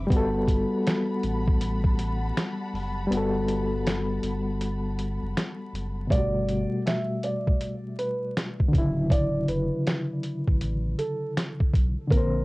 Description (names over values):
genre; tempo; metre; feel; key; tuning
lo-fi hip hop; 80 BPM; 4/4; swing 66% on 16ths; G major, G lydian from 6.1 s; A4 = 440 Hz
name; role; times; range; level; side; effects
overdriven reed electric piano; accompaniment; 0.0-12.4 s; B2 to C5; -28 LUFS; left 1 dB; fast tremolo, cassette tape
muted studio string section; sustained chords; 0.0-6.1 s; G3 to B5; -37 LUFS; equal; cassette tape
saturated sub bass; bass; 0.0-12.4 s; D1 to B1; -30 LUFS; equal; tube saturation
lo-fi sampler-style drum kit; drums; 0.1-12.3 s; finger snaps, hi-hat, kick drum, snare drum; -25 LUFS; equal; vintage 12-bit sampler grit, cassette tape
felt-muted upright piano; melody; 6.1-12.4 s; A4 to E5; -31 LUFS; right 2 dB; cassette tape
room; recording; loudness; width
light reverb; home recording on cassette, vinyl crackle, nothing above 10.9 kHz; -24 LUFS; side -22 dB against mid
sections
0.0-6.1 A section; 6.1-12.4 B section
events
break 3.1-6.1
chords
0.1 Gmaj9; 8.7 Dmaj9